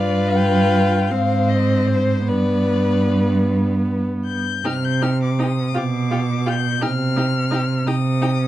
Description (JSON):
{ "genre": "classical, slow romantic movement for string quartet", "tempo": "48-57 BPM (dotted quarters)", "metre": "6/8", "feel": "rubato", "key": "C minor", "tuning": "A4 = 439 Hz", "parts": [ { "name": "warm violin", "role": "melody", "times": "0.0-8.5 s", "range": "C5 to G6", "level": "-26 LUFS", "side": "left 8 dB", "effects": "none" }, { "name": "rich violin", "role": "second line", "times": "0.0-8.3 s", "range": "G4 to C5", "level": "-26 LUFS", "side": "left 4 dB", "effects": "none" }, { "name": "warm viola", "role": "accompaniment", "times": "0.0-8.3 s", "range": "B3 to F4", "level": "-23 LUFS", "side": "equal", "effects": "none" }, { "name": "rich cello", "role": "bass", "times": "0.0-8.5 s", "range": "G2 to C3", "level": "-19 LUFS", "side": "right 2 dB", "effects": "none" } ], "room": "light reverb", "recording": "dark, warm production", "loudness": "-17 LUFS", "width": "side -14 dB against mid", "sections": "0.0-4.6 A section; 4.6-8.5 B section", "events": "none", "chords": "0.0 G7; 1.1 Ab; 2.3 G; 4.6 Cm; 5.8 G7/B; 6.8 Cm", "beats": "1.10 | 2.28 3.46 | 4.65 5.76 | 6.82 7.87" }